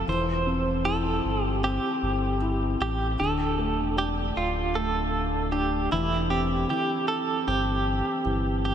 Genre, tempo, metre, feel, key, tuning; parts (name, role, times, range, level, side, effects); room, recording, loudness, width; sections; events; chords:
pop ballad; 77 BPM; 4/4; straight; A4 = 441 Hz
direct-recorded clean electric guitar; melody; 0.0-8.7 s; E4 to C5; -27 LUFS; right 2 dB; tremolo, analog delay
felt-muted upright piano; accompaniment; 0.0-8.7 s; D3 to E4; -29 LUFS; left 1 dB
sub bass with octave; bass; 0.0-8.7 s; D1 to A1; -29 LUFS; equal
wet huge ambient reverb, RT60 8.3 s; dreamy mix soaked in reverb; -24 LUFS; side -9 dB against mid
0.0-8.7 A section
0.1 C/E; 3.2 D5; 5.9 C/E